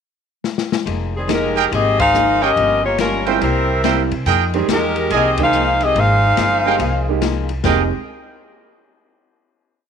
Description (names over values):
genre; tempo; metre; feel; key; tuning
jazz, big band swing; 142 BPM; 4/4; swing 65% on 8ths; F minor; A4 = 439 Hz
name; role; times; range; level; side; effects
open jazz drum kit; drums; 0.4-7.8 s; crash cymbal, hi-hat, kick drum, ride cymbal, snare drum; -25 LUFS; left 7 dB; none
archtop guitar, miked and amplified; accompaniment; 0.9-7.9 s; G2 to Ab4; -26 LUFS; left 13 dB; none
upright bass; bass; 0.9-7.9 s; F1 to C3; -22 LUFS; equal; none
mellow saxophone section; melody; 1.2-7.2 s; Eb3 to F5; -16 LUFS; left 2 dB; none
warm grand piano; accompaniment; 1.3-7.9 s; G3 to G5; -23 LUFS; right 13 dB; none
bright trumpet section; stabs; 1.6-7.8 s; Ab4 to Ab5; -21 LUFS; right 12 dB; none
room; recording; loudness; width
light reverb, small room ambience; 1960s-style stereo with parts hard left and right; -14 LUFS; side -7 dB against mid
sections
0.0-0.9 pickup bar; 0.9-7.6 A section; 7.6-9.3 final chord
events
drum fill 0.4-0.9; band accent 1.9, 5.3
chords
0.0 N.C.; 0.9 Fm11; 2.6 Gm7b5; 3.4 C7; 4.3 Fm11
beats
0.02 0.44 | 0.87 1.29 1.72 2.15 | 2.57 3.00 3.42 3.84 | 4.27 4.69 5.11 5.53 | 5.96 6.38 6.80 7.22 | 7.64